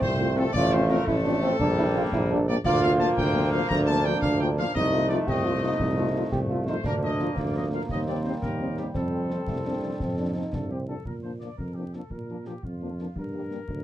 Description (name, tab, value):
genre	military-style march for wind band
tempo	114 BPM (dotted quarters)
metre	6/8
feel	straight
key	Bb major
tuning	A4 = 441 Hz
part	dark trumpet section	melody	0.0-13.8 s	F4 to Bb5	-33 LUFS	left 2 dB	none
part	clear euphonium	second line	0.0-11.0 s	A3 to G4	-29 LUFS	right 2 dB	none
part	bright trombone section	sustained chords	0.0-10.9 s	F3 to C4	-32 LUFS	left 1 dB	none
part	clear tuba	bass	0.0-13.8 s	A1 to Bb2	-28 LUFS	right 1 dB	none
part	concert snare drum, concert bass drum and clash cymbals	drums	0.0-13.8 s	none	-33 LUFS	left 1 dB	none
part	warm French horn section	accompaniment	0.2-13.6 s	F3 to F4	-32 LUFS	left 3 dB	none
room	light reverb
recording	dark, warm production, vinyl crackle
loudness	-23 LUFS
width	side -12 dB against mid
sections	0.0-11.1 A section; 11.1-13.8 B section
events	none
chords	0.0 F; 0.6 F/A; 1.6 Gm/Bb; 2.7 Bb/D; 4.8 F7/C; 6.9 Bb/D; 7.9 Cm7/Eb; 9.0 F; 11.1 Bb; 13.2 Gm